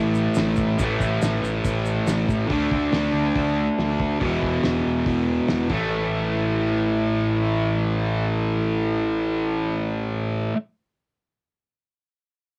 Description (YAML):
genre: garage rock duo or trio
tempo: 140 BPM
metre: 4/4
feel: straight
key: unclear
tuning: A4 = 440 Hz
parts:
  - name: fuzz guitar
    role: riff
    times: 0.0-10.6 s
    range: E2 to D4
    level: -24 LUFS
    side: equal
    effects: distortion, cassette tape
  - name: fuzz picked electric bass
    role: bass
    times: 0.0-10.5 s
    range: E1 to D2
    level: -30 LUFS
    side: equal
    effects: overdrive
  - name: egg shaker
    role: percussion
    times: 0.1-2.4 s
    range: none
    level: -45 LUFS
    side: equal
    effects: none
  - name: cloth-damped thuddy drum kit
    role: drums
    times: 0.4-5.8 s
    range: crash cymbal, hi-hat, kick drum, snare drum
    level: -31 LUFS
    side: equal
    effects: cassette tape
room: moderate booth ambience, RT60 0.3 s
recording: home recording on cassette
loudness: -23 LUFS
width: mono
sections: 0.0-5.9 A section; 5.9-9.3 B section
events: none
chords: 0.0 A5; 2.5 D5; 4.2 E5; 5.7 A5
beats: 0.37 | 0.79 1.22 1.65 2.07 | 2.50 2.92 3.35 3.78 | 4.21 4.63 5.06 5.49 | 5.92 6.34 6.77 7.20 | 7.62 8.05 8.48 8.91